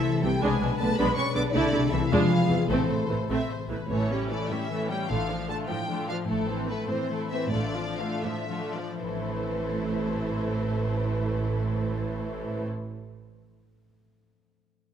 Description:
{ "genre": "classical", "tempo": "74-109 BPM (dotted quarters)", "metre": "6/8", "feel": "rubato", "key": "A minor", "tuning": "A4 = 439 Hz", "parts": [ { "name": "warm symphonic violin section", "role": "melody", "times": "0.0-12.7 s", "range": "A4 to D6", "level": "-35 LUFS", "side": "left 3 dB", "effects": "none" }, { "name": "rich symphonic violin section", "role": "second line", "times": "0.0-12.7 s", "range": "C4 to E5", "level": "-36 LUFS", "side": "left 1 dB", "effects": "none" }, { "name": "rich symphonic viola section", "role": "accompaniment", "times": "0.0-12.7 s", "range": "D3 to E4", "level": "-31 LUFS", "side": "right 2 dB", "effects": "none" }, { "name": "mellow French horn section", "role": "sustained chords", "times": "0.0-3.3 s", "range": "A3 to D5", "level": "-31 LUFS", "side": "left 1 dB", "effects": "none" }, { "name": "concert harp", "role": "arpeggios", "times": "0.0-13.2 s", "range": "A2 to D6", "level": "-32 LUFS", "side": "left 8 dB", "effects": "none" }, { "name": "rich chamber cello section", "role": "bass", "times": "0.0-12.7 s", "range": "A2 to D4", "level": "-31 LUFS", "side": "right 3 dB", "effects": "none" }, { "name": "rich symphonic double bass section", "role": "bass", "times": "0.2-12.7 s", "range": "A1 to E2", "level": "-34 LUFS", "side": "right 3 dB", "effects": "none" } ], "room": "moderate scoring stage reverb, RT60 1.8 s", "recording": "none", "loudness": "-25 LUFS", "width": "side -8 dB against mid", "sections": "0.0-3.9 A section; 3.9-9.0 B section; 9.0-11.9 C section", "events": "slowing down 5.7-9.0", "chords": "0.4 G#dim/B; 1.5 Am/C; 2.1 E7b9; 2.7 Am; 3.9 A7; 5.1 Dm/A; 6.3 Am; 7.5 Dm/A; 9.0 Am", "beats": "| 0.43 0.98 | 1.54 2.10 | 2.69 3.30 | 3.90 4.50 | 5.09 5.68 | 6.28 6.88 | 7.52 8.23 | 9.01 9.73 | 10.45 11.18" }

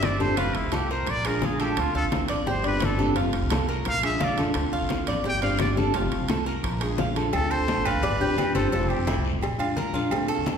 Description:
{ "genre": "latin, Cuban son and guajira", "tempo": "172 BPM", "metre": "4/4", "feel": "straight", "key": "unclear", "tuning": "A4 = 439 Hz", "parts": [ { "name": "trumpet with straight mute", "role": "melody", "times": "0.0-9.2 s", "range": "E4 to G5", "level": "-29 LUFS", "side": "left 1 dB", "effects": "none" }, { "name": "fingerpicked steel-string acoustic guitar", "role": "accompaniment", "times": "0.0-10.6 s", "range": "C3 to G4", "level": "-28 LUFS", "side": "left 2 dB", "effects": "none" }, { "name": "Cuban tres", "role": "arpeggios", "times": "0.0-10.6 s", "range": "C4 to F5", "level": "-30 LUFS", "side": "right 3 dB", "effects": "none" }, { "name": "upright bass", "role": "bass", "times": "0.0-10.6 s", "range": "F1 to F2", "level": "-29 LUFS", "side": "equal", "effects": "none" }, { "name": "bongos and cowbell", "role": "percussion", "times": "0.0-10.6 s", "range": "none", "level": "-34 LUFS", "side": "left 5 dB", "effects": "none" }, { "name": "congas", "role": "percussion", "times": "0.0-10.6 s", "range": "none", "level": "-33 LUFS", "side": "equal", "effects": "none" }, { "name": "guiro", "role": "percussion", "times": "0.0-10.6 s", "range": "none", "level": "-42 LUFS", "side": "left 5 dB", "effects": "none" }, { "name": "timbales and agogo bells", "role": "percussion", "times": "0.0-10.5 s", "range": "none", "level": "-34 LUFS", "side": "right 4 dB", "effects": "none" } ], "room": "wet recital hall reverb, RT60 1.7 s", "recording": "recorded in a church or concert hall", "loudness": "-22 LUFS", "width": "side -7 dB against mid", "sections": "0.0-7.3 A section; 7.3-10.6 B section", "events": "muted trumpet solo 0.0-7.3", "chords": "0.4 F; 1.1 Bb7; 1.8 Dm7; 2.5 G7sus4; 3.2 F; 3.9 Bb7; 4.6 Dm7; 5.3 G7sus4; 5.9 F; 6.6 Bb7; 7.3 Dm7; 8.0 G7sus4; 8.7 Fmaj9; 9.4 Bb7", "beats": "0.03 | 0.37 0.72 1.07 1.42 | 1.77 2.12 2.46 2.81 | 3.16 3.51 3.86 4.21 | 4.55 4.90 5.25 5.60 | 5.95 6.29 6.64 6.99 | 7.34 7.69 8.04 8.38 | 8.73 9.08 9.42 9.77 | 10.12 10.47" }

